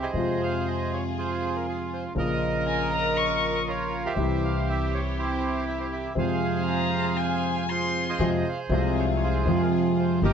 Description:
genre	tango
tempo	119 BPM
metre	4/4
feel	rubato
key	F minor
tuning	A4 = 440 Hz
part	bandoneon	melody	0.0-10.3 s	E4 to F5	-29 LUFS	right 4 dB	none
part	warm concert grand piano	accompaniment	0.0-10.3 s	G1 to G4	-27 LUFS	left 1 dB	none
part	warm studio string section	stabs	0.0-10.3 s	Bb3 to Bb4	-34 LUFS	equal	none
part	upright bass	bass	0.0-10.3 s	G1 to F2	-31 LUFS	right 1 dB	none
part	rich violin	second line	2.7-3.5, 6.7-8.2 s	Ab5 to Db6	-28 LUFS	left 5 dB	none
room	moderate club reverb, RT60 0.6 s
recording	dark, warm production, nothing above 7.8 kHz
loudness	-23 LUFS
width	side -7 dB against mid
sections	0.0-8.2 A section; 8.2-10.3 A section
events	none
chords	0.1 Fm; 2.2 Bbm; 4.2 C; 6.2 Fm

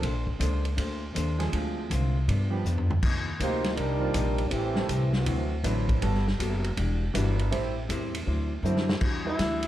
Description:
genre	jazz, big band swing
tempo	160 BPM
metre	4/4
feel	swing 65% on 8ths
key	unclear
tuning	A4 = 440 Hz
part	hollow-body jazz guitar	accompaniment	0.0-9.6 s	G2 to C5	-34 LUFS	left 3 dB	none
part	upright bass	bass	0.0-9.7 s	E1 to G2	-28 LUFS	equal	none
part	vintage drum kit	drums	0.0-9.7 s	crash cymbal, hi-hat, kick drum, ride cymbal, snare drum, toms	-32 LUFS	equal	none
part	bright grand piano	accompaniment	1.4-9.4 s	Eb3 to C5	-34 LUFS	right 4 dB	none
part	bright trombone section	second line	3.4-5.6 s	E3 to C5	-30 LUFS	right 2 dB	none
part	clear alto saxophone	melody	9.3-9.7 s	E4	-28 LUFS	equal	none
room	light reverb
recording	dark, warm production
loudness	-25 LUFS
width	side -13 dB against mid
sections	0.0-9.0 A section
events	trombone section solo 0.0-9.0; drum fill 2.6-3.0, 8.6-9.0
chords	0.0 Bbmaj9; 1.5 Dm7b5; 2.3 G7; 3.0 Cm11; 4.5 Am7; 5.3 D9; 6.0 Gmaj9; 6.8 Em9; 7.5 Am7; 8.3 D9; 9.0 Em9

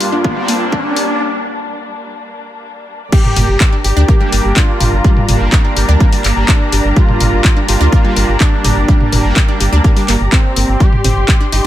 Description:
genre	melodic techno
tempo	125 BPM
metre	4/4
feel	straight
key	G minor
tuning	A4 = 440 Hz
part	wide unison lead	melody	0.0-11.7 s	C4 to G4	-20 LUFS	equal	ping-pong delay
part	muted studio string section	sustained chords	0.0-11.7 s	G2 to C6	-23 LUFS	left 1 dB	sidechain pumping
part	wide unison pluck	arpeggios	0.0-11.7 s	G3 to G5	-22 LUFS	equal	sidechain pumping, tape echo
part	brassy analog pad	stabs	0.0-10.1 s	G3 to D4	-21 LUFS	right 2 dB	chorus, tremolo, cassette tape, sidechain pumping, tape echo
part	overtone-sweeping drone	drone	1.0-1.2 s	G2 to D3	-37 LUFS	right 1 dB	none
part	house drum kit	drums	0.0-11.6 s	crash cymbal, handclaps, hi-hat, toms	-17 LUFS	left 1 dB	high-pass filter on hats, high-pass filter on cymbals, high-pass filter on toms, high-pass filter on snare, high-pass filter on room
part	riser	sound effects	0.0-1.2 s	none	-22 LUFS	left 2 dB	none
part	electronic kick drum	drums	0.2-11.4 s	none	-10 LUFS	equal	none
part	round analog bass	bass	3.4-11.7 s	G1 to D2	-13 LUFS	equal	tube saturation, sidechain pumping
room	light reverb, digital ambience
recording	high-pass filter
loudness	-10 LUFS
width	side -13 dB against mid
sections	0.0-3.1 A section; 3.1-11.7 B section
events	build-up 0.0-3.1; drum fill 0.0-1.2; riser 0.0-1.2; filter sweep on analog synth lead 0.0-3.1; break 1.2-3.1; drop 3.1-11.7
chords	0.0 Gm; 10.8 Cmadd9/G

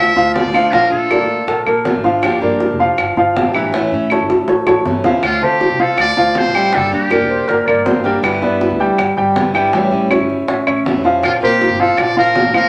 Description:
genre	latin, Cuban son and guajira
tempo	160 BPM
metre	4/4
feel	straight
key	D minor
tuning	A4 = 440 Hz
part	trumpet with metal mute	melody	0.0-1.6, 5.2-7.6, 11.2-12.7 s	F4 to E5	-20 LUFS	equal	none
part	clear baby grand piano	arpeggios	0.0-12.7 s	E3 to G5	-17 LUFS	equal	none
part	upright bass	bass	0.0-12.7 s	E1 to D3	-29 LUFS	equal	none
part	bongos	percussion	0.2-12.5 s	none	-22 LUFS	equal	none
part	picked steel-string acoustic guitar	accompaniment	0.3-12.7 s	B2 to G4	-24 LUFS	equal	none
part	claves	percussion	0.5-12.7 s	none	-24 LUFS	equal	none
part	silver concert flute	second line	7.3-8.9 s	Bb4 to D5	-24 LUFS	equal	none
room	wet studio reverb, RT60 0.6 s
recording	none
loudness	-15 LUFS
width	mono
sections	0.0-5.2 A section; 5.2-12.7 A section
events	drum fill 4.3-5.2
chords	0.0 Dm; 0.7 Bbmaj7; 2.2 Gm7; 3.7 A; 5.2 Dm7; 6.7 Gm; 8.2 Em7/G; 9.7 A7; 11.2 Bbadd9

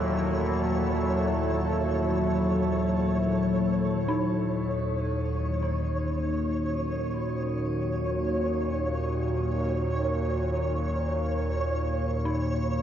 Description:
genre	dark ambient drone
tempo	free time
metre	none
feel	none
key	Eb phrygian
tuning	A4 = 437 Hz
part	deep dark ambient pad	sustained chords	0.0-12.8 s	Gb3 to Db5	-29 LUFS	left 1 dB	chorus, built-in reverb, shimmer reverb
part	analog drone	drone	0.0-12.8 s	Eb2 to Bb2	-29 LUFS	equal	chorus
part	flickering grainy texture	texture	0.0-12.8 s	Db5	-33 LUFS	right 1 dB	built-in reverb, shimmer reverb
part	dark detuned synth bell	arpeggios	4.1-12.8 s	Eb4	-36 LUFS	left 1 dB	chorus, analog delay, shimmer reverb
room	wet plate reverb, RT60 2.4 s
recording	dreamy mix soaked in reverb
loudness	-25 LUFS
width	side -10 dB against mid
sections	0.0-4.1 A section; 4.1-12.8 B section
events	fade-out on synth bell 4.1-12.8; filter sweep on synth drone 4.1-12.8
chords	0.0 Gbm7; 4.1 Ebm

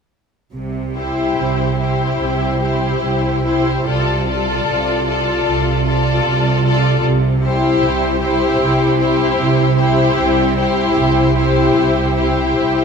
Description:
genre	classical, slow romantic movement for symphony orchestra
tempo	68-78 BPM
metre	4/4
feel	rubato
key	C major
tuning	A4 = 442 Hz
part	rich symphonic cello section	bass	0.5-12.8 s	C3	-21 LUFS	right 4 dB	none
part	rich symphonic double bass section	bass	0.5-12.8 s	C2	-21 LUFS	right 3 dB	none
part	clear symphonic violin section	melody	1.0-12.8 s	C5 to D5	-23 LUFS	left 3 dB	none
part	warm symphonic violin section	second line	1.0-12.8 s	G4 to A4	-20 LUFS	left 1 dB	none
part	rich symphonic viola section	accompaniment	1.0-12.8 s	E4 to F4	-19 LUFS	left 4 dB	none
room	wet concert hall reverb, RT60 2.4 s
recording	none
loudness	-14 LUFS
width	side -6 dB against mid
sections	0.5-12.8 A section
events	none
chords	0.5 C; 3.9 Dm7/C; 7.0 C

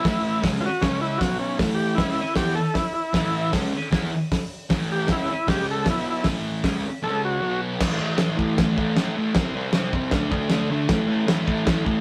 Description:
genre	garage rock duo or trio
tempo	155 BPM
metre	4/4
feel	straight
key	unclear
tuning	A4 = 436 Hz
part	overdriven combo organ	melody	0.0-7.6 s	C#4 to A4	-28 LUFS	equal	none
part	thick fuzz guitar	riff	0.0-12.0 s	A2 to E4	-27 LUFS	equal	distortion
part	cloth-damped thuddy drum kit	drums	0.1-11.9 s	crash cymbal, hi-hat, kick drum, snare drum	-27 LUFS	equal	none
room	light reverb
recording	rough rehearsal-room recording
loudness	-23 LUFS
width	mono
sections	0.0-7.8 A section; 7.8-12.0 B section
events	none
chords	0.0 A; 0.8 C#5; 1.2 B5; 1.6 A; 5.5 C#5; 5.9 B5; 6.2 A; 7.0 C#5; 7.4 B5; 7.8 A5; 9.3 C5; 10.1 D5; 10.9 A5

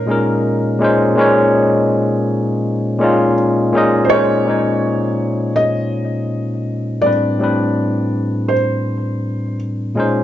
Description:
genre	hip hop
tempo	82 BPM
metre	4/4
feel	swing 66% on 16ths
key	Bb minor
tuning	A4 = 440 Hz
part	felt-muted upright piano	melody	0.0-9.5 s	Bb4 to Eb5	-20 LUFS	right 1 dB	plate reverb, analog delay
part	barky tine electric piano	accompaniment	0.0-10.2 s	A2 to Eb5	-14 LUFS	left 1 dB	plate reverb
room	wet studio reverb, RT60 0.6 s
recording	dark, warm production, nothing above 7.7 kHz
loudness	-14 LUFS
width	side -12 dB against mid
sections	0.0-4.1 A section; 4.1-10.2 B section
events	none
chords	0.0 Bbm11; 7.0 Am11

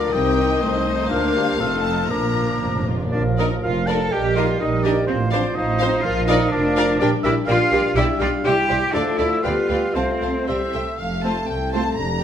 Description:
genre	quick classical-period movement for symphony orchestra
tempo	113-127 BPM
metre	2/4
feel	rubato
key	Bb major, F major from 7.0 s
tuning	A4 = 443 Hz
part	rich chamber violin section	melody	0.0-12.2 s	D5 to Bb5	-30 LUFS	left 5 dB	none
part	clear oboe	second line	0.0-12.2 s	G4 to Bb5	-27 LUFS	right 2 dB	none
part	clear symphonic violin section	second line	0.0-12.2 s	G3 to F5	-31 LUFS	left 2 dB	none
part	mellow hollow concert flute	second line	0.0-12.2 s	D5 to F6	-31 LUFS	left 1 dB	none
part	warm clarinet	second line	0.0-12.2 s	Bb3 to C5	-28 LUFS	left 2 dB	none
part	mellow bassoon	accompaniment	0.0-12.2 s	C3 to A3	-28 LUFS	right 1 dB	none
part	rich chamber viola section	accompaniment	0.0-11.9 s	F3 to C5	-28 LUFS	equal	none
part	dark French horn section	sustained chords	0.0-12.2 s	F3 to C5	-27 LUFS	left 6 dB	none
part	clear chamber cello section	bass	0.0-12.2 s	C2 to A4	-25 LUFS	right 1 dB	none
part	rich chamber double bass section	bass	0.0-12.2 s	F1 to D2	-25 LUFS	right 4 dB	none
part	timpani	percussion	2.1-3.1 s	Bb2	-28 LUFS	equal	none
room	wet recital hall reverb, RT60 1.3 s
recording	none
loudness	-18 LUFS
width	side -9 dB against mid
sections	0.0-3.1 A section; 3.1-11.0 B section; 11.0-12.2 A section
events	timpani fill 2.1-3.1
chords	0.1 Cm; 0.6 Adim/C; 1.1 Bb/D; 1.6 F7; 2.1 Bb; 4.1 Eb/Bb; 5.1 F7/A; 6.0 Bb; 7.0 Gm7/Bb; 8.0 G7; 8.4 C; 8.9 Dm; 9.4 G7/D; 10.0 F/C; 10.5 C; 11.0 F

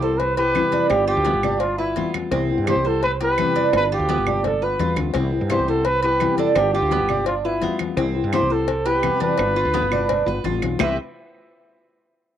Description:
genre	latin, Cuban son and guajira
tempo	170 BPM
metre	4/4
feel	straight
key	C major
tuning	A4 = 445 Hz
part	trumpet with bucket mute	melody	0.0-11.0 s	E4 to E5	-21 LUFS	equal	none
part	nylon-string guitar	accompaniment	0.0-10.9 s	C3 to F4	-26 LUFS	left 6 dB	none
part	Cuban tres	arpeggios	0.0-11.0 s	B3 to C5	-25 LUFS	right 9 dB	none
part	woody fretless electric bass	bass	0.0-11.0 s	G1 to G2	-25 LUFS	right 1 dB	none
part	congas	percussion	0.0-10.9 s	none	-30 LUFS	left 7 dB	none
part	cowbell and bongos	percussion	0.2-10.9 s	none	-30 LUFS	left 9 dB	none
part	claves	percussion	0.6-10.9 s	none	-30 LUFS	right 10 dB	none
room	light reverb, small room ambience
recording	home recording on cassette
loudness	-18 LUFS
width	side -10 dB against mid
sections	0.0-10.8 A section; 10.8-12.2 B section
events	none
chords	0.0 Cmaj7; 0.9 G7; 2.3 Cmaj7; 3.7 G7; 5.1 Cmaj7; 6.6 G7; 8.0 Cmaj7; 9.4 G7; 10.8 Cmaj7

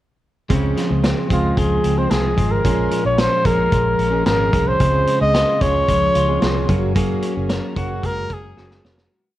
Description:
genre	jangly indie pop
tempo	111 BPM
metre	4/4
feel	straight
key	Db major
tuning	A4 = 442 Hz
part	fingerpicked plugged-in steel-string acoustic guitar	accompaniment	0.5-9.1 s	Bb2 to Ab4	-24 LUFS	right 6 dB	none
part	twelve-string electric guitar	arpeggios	0.5-9.4 s	Bb2 to Bb4	-23 LUFS	left 4 dB	vibrato effect, slapback echo
part	vintage muted fingered electric bass	bass	0.5-9.1 s	F1 to Db2	-22 LUFS	equal	none
part	vintage drum kit	drums	0.5-9.1 s	hi-hat, kick drum, snare drum	-22 LUFS	equal	none
part	warm trumpet	melody	1.3-8.9 s	F4 to Eb5	-19 LUFS	equal	slapback echo
room	light reverb, small room ambience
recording	worn, warbling old tape, cassette tape, warbly pitch drift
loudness	-15 LUFS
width	side -14 dB against mid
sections	0.5-9.1 verse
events	fade-out 7.0-9.1; drum fill 8.6-9.1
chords	0.5 Dbmaj7; 2.6 Bbm7; 4.8 Dbmaj7; 6.7 Gbadd9

